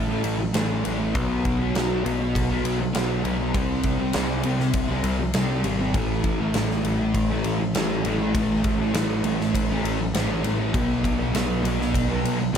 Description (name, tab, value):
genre	rock, shoegaze and dream pop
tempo	100 BPM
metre	4/4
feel	straight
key	unclear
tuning	A4 = 440 Hz
part	thick fuzz guitar	riff	0.0-12.6 s	A2 to C4	-24 LUFS	equal	distortion, lush chorus
part	modern bright picked electric bass	bass	0.0-12.6 s	G#1 to C2	-27 LUFS	equal	none
part	huge arena drum kit	drums	0.2-12.6 s	kick drum, ride cymbal, snare drum	-28 LUFS	equal	none
room	light reverb, small room reverb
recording	none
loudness	-21 LUFS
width	side -8 dB against mid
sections	0.0-12.6 A section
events	none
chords	0.0 A5; 1.2 B5; 3.6 C5; 5.9 A5; 10.7 B5